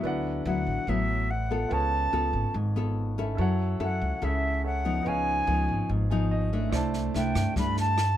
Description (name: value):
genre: bossa nova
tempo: 144 BPM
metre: 4/4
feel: straight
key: D major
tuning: A4 = 440 Hz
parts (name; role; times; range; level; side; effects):
- clear grand piano; accompaniment; 0.0-8.2 s; D#4 to A5; -36 LUFS; right 4 dB; none
- nylon-string guitar; accompaniment; 0.0-8.2 s; G#2 to A4; -30 LUFS; left 2 dB; none
- upright bass; bass; 0.0-8.2 s; G#1 to G2; -29 LUFS; equal; none
- reedy silver concert flute; melody; 0.5-8.2 s; E5 to B5; -29 LUFS; equal; none
- open jazz drum kit; drums; 6.7-8.1 s; kick drum, rim click, snare drum; -33 LUFS; right 1 dB; none
room: light reverb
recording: close, detailed microphones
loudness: -25 LUFS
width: side -11 dB against mid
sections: 0.0-8.2 A section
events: grand piano fill 5.9-6.7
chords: 0.0 D69; 1.7 C#7b13; 3.4 F#m7; 5.1 C#9; 6.7 C69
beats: | 0.04 0.45 0.87 1.29 | 1.71 2.13 2.54 2.96 | 3.38 3.80 4.22 4.63 | 5.05 5.47 5.89 6.31 | 6.72 7.14 7.56 7.98